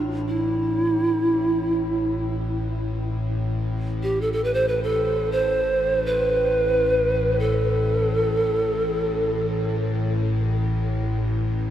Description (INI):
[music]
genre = world meditative, free-time meditation music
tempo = free time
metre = none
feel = none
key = A minor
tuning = A4 = 440 Hz
[part]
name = evolving wavetable pad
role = drone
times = 0.0-11.7 s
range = A1 to A2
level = -25 LUFS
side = left 1 dB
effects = chorus, built-in reverb
[part]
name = polished pan flute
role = melody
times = 0.3-9.9 s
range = E4 to C5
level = -22 LUFS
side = right 1 dB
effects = shimmer reverb, diffuse ambient delay
[sound]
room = wet huge ambient reverb, RT60 6.0 s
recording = none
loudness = -20 LUFS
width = side -11 dB against mid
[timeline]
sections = 0.0-11.7 A section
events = none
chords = none